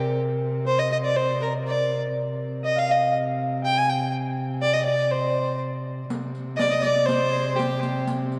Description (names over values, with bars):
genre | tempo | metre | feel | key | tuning
medieval dance | 122 BPM | 2/4 | straight | C minor | A4 = 440 Hz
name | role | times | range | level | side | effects
dark fiddle | melody | 0.0-8.1 s | G4 to Ab5 | -26 LUFS | equal | none
concert harp | second line | 0.0-8.4 s | G4 to Ab5 | -32 LUFS | equal | none
warm viola da gamba | drone | 0.0-8.4 s | C3 | -31 LUFS | equal | none
riq | percussion | 6.1-8.4 s | none | -34 LUFS | equal | none
edgy shawm | second line | 6.6-8.1 s | G4 to Eb5 | -37 LUFS | equal | none
room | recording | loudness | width
wet church reverb, RT60 3.2 s | dark, warm production | -24 LUFS | mono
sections
0.0-6.1 A section; 6.1-8.4 A section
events
none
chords
none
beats
| 0.17 0.66 | 1.16 1.65 | 2.14 2.63 | 3.13 3.62 | 4.11 4.61 | 5.10 5.59 | 6.09 6.58 | 7.07 7.57 | 8.06